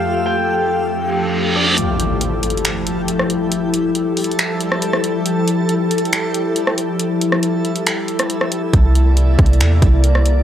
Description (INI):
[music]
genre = hip hop, atmospheric cloud-rap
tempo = 138 BPM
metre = 4/4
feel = half-time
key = F major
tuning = A4 = 440 Hz
[part]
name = Celtic harp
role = melody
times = 0.0-3.4 s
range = D5 to G5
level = -22 LUFS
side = left 1 dB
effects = low-pass filter, analog delay
[part]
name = glassy FM pad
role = sustained chords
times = 0.0-10.4 s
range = F2 to D5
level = -19 LUFS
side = left 2 dB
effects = ensemble chorus, built-in reverb
[part]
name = backwards swelling texture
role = texture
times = 0.0-10.4 s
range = G3 to E6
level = -24 LUFS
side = right 1 dB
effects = built-in reverb
[part]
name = reverse cymbal and impact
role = sound effects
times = 1.1-3.5 s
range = none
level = -20 LUFS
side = right 1 dB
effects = none
[part]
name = trap drum kit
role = drums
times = 1.8-10.4 s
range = finger snaps, hi-hat, kick drum, rim click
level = -18 LUFS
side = equal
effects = none
[part]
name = clean 808-style bass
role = bass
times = 8.7-10.4 s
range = C2 to E2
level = -12 LUFS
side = equal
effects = none
[sound]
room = light reverb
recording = dry, gritty hardware recording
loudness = -14 LUFS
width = side -10 dB against mid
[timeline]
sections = 0.0-1.8 A section; 1.8-10.4 B section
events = reverse cymbal 1.1-1.8; kick muted 1.8-8.7; impact 1.8-3.5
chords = 0.0 Fmaj9; 8.7 C9